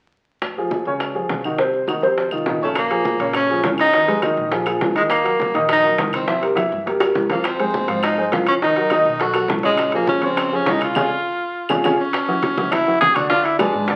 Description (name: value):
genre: Afro-Cuban jazz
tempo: 205 BPM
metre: 4/4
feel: straight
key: Bb minor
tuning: A4 = 441 Hz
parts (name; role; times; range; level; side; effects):
- upright bass; bass; 0.4-14.0 s; F1 to Bb2; -37 LUFS; equal; none
- bongos; percussion; 0.4-14.0 s; none; -28 LUFS; equal; none
- claves; percussion; 0.4-13.7 s; none; -35 LUFS; equal; none
- congas; percussion; 0.4-14.0 s; none; -36 LUFS; equal; none
- warm upright piano; accompaniment; 0.6-14.0 s; C3 to F5; -23 LUFS; equal; none
- clear tenor saxophone; melody; 2.6-14.0 s; Ab3 to G#4; -21 LUFS; equal; none
- timbales; percussion; 2.8-14.0 s; none; -30 LUFS; equal; none
room: moderate large studio reverb, RT60 0.8 s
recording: very old 78 rpm record, vinyl crackle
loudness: -19 LUFS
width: mono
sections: 0.4-2.8 A section; 2.8-12.1 B section; 12.1-14.0 C section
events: drum fill 6.9-7.4, 11.5-12.1; band accent 11.0-12.1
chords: 0.4 Dbmaj9/F; 1.6 Cdim; 2.2 F5; 2.8 Bbm7; 3.9 Fm7b5; 4.5 Bb5; 5.1 Ebm; 6.3 C7; 7.4 Fm7; 8.6 Cm7b5; 9.2 Bsus2; 9.8 Bbm9; 11.0 Db; 12.1 F#5; 13.3 E7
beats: | 0.42 0.71 1.01 1.30 | 1.59 1.89 2.18 2.47 | 2.76 3.06 3.35 3.64 | 3.94 4.23 4.52 4.81 | 5.11 5.40 5.69 5.98 | 6.28 6.57 6.86 7.16 | 7.45 7.74 8.03 8.33 | 8.62 8.91 9.21 9.50 | 9.79 10.08 10.38 10.67 | 10.96 11.26 11.55 11.84 | 12.13 12.43 12.72 13.01 | 13.30 13.60 13.89